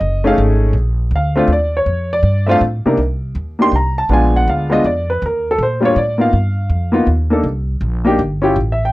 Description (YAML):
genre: jazz, small-group swing and bop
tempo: 161 BPM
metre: 3/4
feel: swing 65% on 8ths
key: unclear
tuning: A4 = 440 Hz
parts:
  - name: warm baby grand piano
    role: accompaniment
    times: 0.0-8.9 s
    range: C3 to C6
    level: -15 LUFS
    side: equal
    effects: none
  - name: upright bass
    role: bass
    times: 0.0-8.9 s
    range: Gb1 to Bb2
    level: -17 LUFS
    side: equal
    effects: none
room: light reverb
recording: dry, close 1970s-style studio recording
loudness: -13 LUFS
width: side -18 dB against mid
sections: 0.0-3.0 A section; 3.0-8.9 A section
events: none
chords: 0.0 F7alt; 0.8 Bbmaj9; 3.0 Cm7; 4.1 Bb7b9; 5.2 Ebmaj9; 7.5 C7(no3)